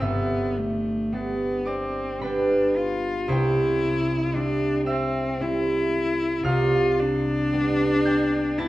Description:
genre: classical, romantic duo for cello and harp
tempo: 56 BPM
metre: 3/4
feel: rubato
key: unclear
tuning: A4 = 445 Hz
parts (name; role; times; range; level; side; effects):
- warm cello; melody; 0.0-8.7 s; A3 to F4; -25 LUFS; left 1 dB; none
- concert harp; accompaniment; 0.0-8.7 s; G1 to A6; -24 LUFS; right 1 dB; none
room: wet recital hall reverb, RT60 1.6 s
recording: dark, warm production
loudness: -21 LUFS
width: side -16 dB against mid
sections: 0.0-8.7 A section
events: none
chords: 0.0 G; 3.3 C; 6.5 G7/C

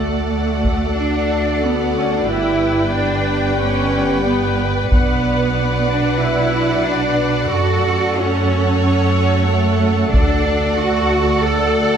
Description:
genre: cinematic, epic orchestral film score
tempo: 92 BPM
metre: 4/4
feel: straight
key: D major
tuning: A4 = 441 Hz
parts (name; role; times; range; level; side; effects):
- warm symphonic violin section; melody; 0.0-12.0 s; F#5 to G5; -27 LUFS; left 4 dB; none
- rich studio violin section; second line; 0.0-12.0 s; C#5 to D5; -24 LUFS; right 1 dB; none
- rich symphonic viola section; accompaniment; 0.0-12.0 s; A4 to B4; -24 LUFS; equal; none
- warm French horn section; sustained chords; 0.0-12.0 s; A3 to G4; -24 LUFS; left 4 dB; none
- rich symphonic cello section; bass; 0.0-12.0 s; A3 to A4; -20 LUFS; right 2 dB; none
- warm symphonic double bass section; bass; 0.0-12.0 s; G1 to F#2; -20 LUFS; right 3 dB; none
- solo taiko drums; drums; 0.6-0.9, 4.9-11.4 s; none; -18 LUFS; equal; none
room: moderate scoring stage reverb, RT60 1.6 s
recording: none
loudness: -14 LUFS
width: side -8 dB against mid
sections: 0.0-12.0 A section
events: band accent 0.0-0.3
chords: 0.0 D; 2.3 G; 4.9 Bm; 7.5 F#m; 10.1 D

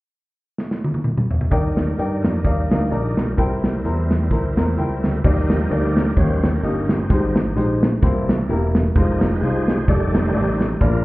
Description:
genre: uptempo gospel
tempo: 129 BPM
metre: 4/4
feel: swing 56% on 8ths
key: Eb major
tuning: A4 = 436 Hz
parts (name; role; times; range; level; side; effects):
- modern studio drum kit; drums; 0.6-10.9 s; crash cymbal, hi-hat, kick drum, snare drum, toms; -20 LUFS; equal; none
- clear grand piano; accompaniment; 1.5-11.0 s; Ab2 to Bb5; -23 LUFS; left 2 dB; none
- bright tonewheel organ; sustained chords; 1.5-11.0 s; Eb3 to Eb5; -27 LUFS; right 2 dB; slow rotary speaker, overdrive, chorus vibrato
- fingered electric bass; bass; 1.5-11.0 s; E1 to G2; -21 LUFS; equal; none
room: light reverb, studio reverb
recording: heard muffled through a wall, club reverb, EQ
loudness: -17 LUFS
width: side -19 dB against mid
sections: 0.0-1.5 A section; 1.5-5.2 B section; 5.2-11.0 C section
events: drum fill 0.6-1.5; tonewheel organ solo 5.2-11.0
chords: 0.0 N.C.; 1.5 Ebmaj7; 3.4 C7; 5.2 Ebmaj7; 6.2 Eb7; 7.1 Abmaj7; 8.0 C7; 9.0 Fm7; 9.9 F13

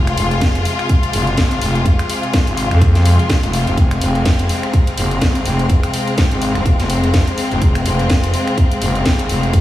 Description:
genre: bass house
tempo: 125 BPM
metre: 4/4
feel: swing 57% on 16ths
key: F minor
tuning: A4 = 440 Hz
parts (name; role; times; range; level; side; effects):
- bright studio string section; sustained chords; 0.0-9.6 s; C3 to F4; -20 LUFS; left 2 dB; sidechain pumping
- growling FM bass; bass; 0.0-9.6 s; Eb1 to F2; -17 LUFS; equal; overdrive, sidechain pumping
- airy breathy pad; texture; 0.0-9.6 s; C4 to Bb5; -26 LUFS; equal; chorus, sidechain pumping
- house drum kit; drums; 0.1-9.6 s; finger snaps, hi-hat, snare drum; -23 LUFS; equal; small room ambience
- electronic kick drum; drums; 0.4-9.6 s; none; -14 LUFS; equal; small room ambience
room: light reverb, digital ambience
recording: small room reverb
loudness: -13 LUFS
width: side -14 dB against mid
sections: 0.0-9.6 A section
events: none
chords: 0.0 Fm

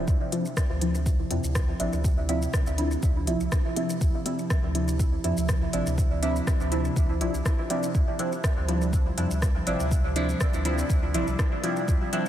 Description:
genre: dub techno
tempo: 122 BPM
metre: 4/4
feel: swing 53% on 16ths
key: D minor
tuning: A4 = 438 Hz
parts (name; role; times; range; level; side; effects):
- warbly tape-like pad; sustained chords; 0.0-12.3 s; C3 to E4; -33 LUFS; right 2 dB; chorus, built-in reverb, phaser, sidechain pumping
- deep mellow chord stab; stabs; 0.0-12.2 s; F3 to E4; -29 LUFS; equal; chorus, phaser, sidechain pumping, dub echo
- pure sine sub bass; bass; 0.0-12.0 s; A1 to F2; -29 LUFS; equal; sidechain pumping
- deep house drum kit; drums; 0.1-12.3 s; hi-hat, rim click, shaker; -35 LUFS; left 1 dB; dub echo
- electronic kick drum; drums; 0.1-12.0 s; none; -24 LUFS; equal; none
room: light reverb, digital ambience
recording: none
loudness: -23 LUFS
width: side -11 dB against mid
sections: 0.0-12.3 A section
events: none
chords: 0.0 Dm9

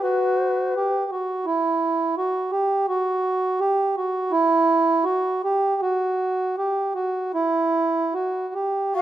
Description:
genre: japanese traditional, Japanese chamber music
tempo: 71-86 BPM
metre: 4/4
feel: rubato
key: unclear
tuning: A4 = 440 Hz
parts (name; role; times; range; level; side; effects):
- mellow shakuhachi; melody; 0.0-1.1, 9.0 s; B4 to F#5; -25 LUFS; left 5 dB; none
- mellow accordion; second line; 0.0-9.0 s; E4 to G4; -20 LUFS; right 2 dB; none
room: light reverb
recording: close, detailed microphones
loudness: -20 LUFS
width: side -12 dB against mid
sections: 0.0-8.9 A section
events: none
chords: none

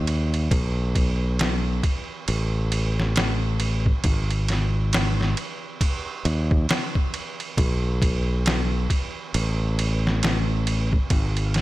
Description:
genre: trip hop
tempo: 68 BPM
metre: 4/4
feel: swing 59% on 16ths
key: unclear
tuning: A4 = 438 Hz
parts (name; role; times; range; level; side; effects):
- modern bright fingered electric bass; bass; 0.0-11.6 s; G#1 to D#2; -22 LUFS; equal; none
- trip hop sampler-style drum kit; drums; 0.1-11.6 s; kick drum, ride cymbal, snare drum; -24 LUFS; equal; none
room: digital ambience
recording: none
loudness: -21 LUFS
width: side -17 dB against mid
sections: 0.0-11.6 A section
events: none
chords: none

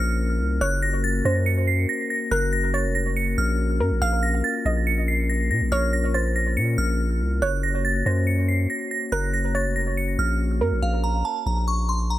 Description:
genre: hip hop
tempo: 141 BPM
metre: 4/4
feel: half-time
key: Bb harmonic minor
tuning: A4 = 440 Hz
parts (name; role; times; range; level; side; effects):
- glassy synth bell; melody; 0.0-12.2 s; F5 to Db7; -26 LUFS; right 1 dB; chorus, phaser, analog delay
- soft round pluck; second line; 0.0-10.8 s; Bb4 to F5; -30 LUFS; right 2 dB; chorus, analog delay
- glass harmonica; sustained chords; 0.0-10.8 s; Bb3 to Db5; -30 LUFS; left 5 dB; none
- long sustained 808-style bass; bass; 0.0-12.2 s; F1 to Bb2; -23 LUFS; equal; none
room: little or no reverb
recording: echo-heavy mix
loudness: -21 LUFS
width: side -14 dB against mid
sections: 0.0-10.8 A section; 10.8-12.2 B section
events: none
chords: 0.0 Bbm; 0.6 Gb; 4.0 Bbm; 7.4 Gb; 10.8 Bb5

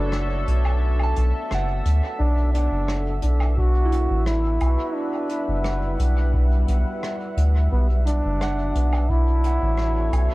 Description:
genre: ambient dub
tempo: 87 BPM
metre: 4/4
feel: straight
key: B minor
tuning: A4 = 440 Hz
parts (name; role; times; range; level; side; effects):
- mellow trombone; melody; 0.0-10.3 s; B3 to F#4; -28 LUFS; equal; cassette tape, analog delay
- deep dark ambient pad; sustained chords; 0.0-10.3 s; G3 to F#5; -31 LUFS; left 1 dB; chorus, built-in reverb, cassette tape
- soft synth bell; arpeggios; 0.0-10.3 s; E4 to A5; -34 LUFS; right 3 dB; chorus, cassette tape, analog delay
- soft dub sub bass; bass; 0.0-10.3 s; F#1 to D2; -20 LUFS; equal; tube saturation
- soft brush drum kit; drums; 0.1-10.3 s; hi-hat, rim click, woodblock; -36 LUFS; right 1 dB; cassette tape, dub echo
- electronic kick drum; drums; 3.6-9.2 s; none; -26 LUFS; equal; none
room: studio ambience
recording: home recording on cassette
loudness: -19 LUFS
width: side -20 dB against mid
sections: 0.0-10.3 A section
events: break 0.0-2.2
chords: 0.0 Bm7; 2.2 Em7; 7.7 Bm7

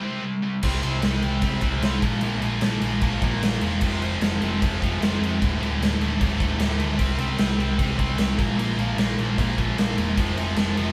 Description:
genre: hard rock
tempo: 151 BPM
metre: 4/4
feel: straight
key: unclear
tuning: A4 = 440 Hz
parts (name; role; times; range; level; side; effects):
- scooped high-gain guitar; riff; 0.0-10.9 s; D2 to C4; -29 LUFS; equal; distortion
- hollow-body short-scale picked electric bass; bass; 0.6-10.9 s; D1 to F2; -30 LUFS; equal; none
- huge arena drum kit; drums; 0.6-10.9 s; crash cymbal, kick drum, snare drum; -26 LUFS; equal; none
room: moderate studio reverb, RT60 0.8 s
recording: band playing live in one room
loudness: -23 LUFS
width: mono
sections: 0.6-10.9 A section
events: break 0.0-0.6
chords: 0.0 C5; 2.0 Bb5; 3.8 F5; 5.4 D5; 7.0 C5; 8.4 Bb5; 10.2 F5

